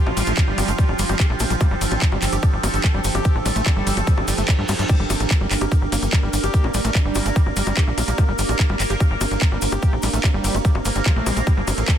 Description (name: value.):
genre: psychedelic trance.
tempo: 146 BPM.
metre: 4/4.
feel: straight.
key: G minor.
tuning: A4 = 440 Hz.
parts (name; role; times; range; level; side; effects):
bubbling stepped-filter texture; sustained chords; 0.0-12.0 s; F3 to Bb4; -26 LUFS; equal; chorus, built-in reverb, sidechain pumping.
screaming distorted acid line; riff; 0.0-11.9 s; F3 to G4; -29 LUFS; moving between left 5 dB and right 4 dB; distortion, chorus, auto-pan, sidechain pumping, digital delay.
ethereal airy pad; texture; 0.0-12.0 s; D4 to G5; -30 LUFS; right 5 dB; ensemble chorus, built-in reverb, sidechain pumping.
tight sequencer bass; bass; 0.1-11.8 s; G1 to G2; -23 LUFS; equal; none.
drum and bass drum kit; drums; 0.1-12.0 s; bongos, crash cymbal, handclaps, hi-hat, ride cymbal; -26 LUFS; left 1 dB; none.
tube shaker; percussion; 0.2-12.0 s; none; -33 LUFS; left 5 dB; none.
electronic kick drum; drums; 0.4-12.0 s; none; -18 LUFS; equal; none.
reverse cymbal; sound effects; 4.2-4.9 s; none; -32 LUFS; right 2 dB; none.
room: digital ambience.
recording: dense, heavily limited modern master.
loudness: -17 LUFS.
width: side -10 dB against mid.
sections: 0.0-12.0 A section.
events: reverse cymbal 4.2-4.9.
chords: 0.0 G5.